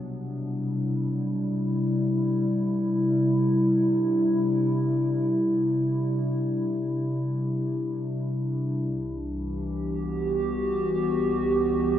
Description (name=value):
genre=ambient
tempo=free time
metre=none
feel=none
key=C lydian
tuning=A4 = 440 Hz
part: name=warbly tape-like pad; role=solo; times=0.0-12.0 s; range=C2 to G4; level=-23 LUFS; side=equal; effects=chorus, built-in reverb, analog delay
room=wet huge ambient reverb, RT60 7.6 s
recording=dreamy mix soaked in reverb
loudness=-23 LUFS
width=side -11 dB against mid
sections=0.0-12.0 A section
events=none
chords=0.0 Cadd9; 8.8 Em/C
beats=free time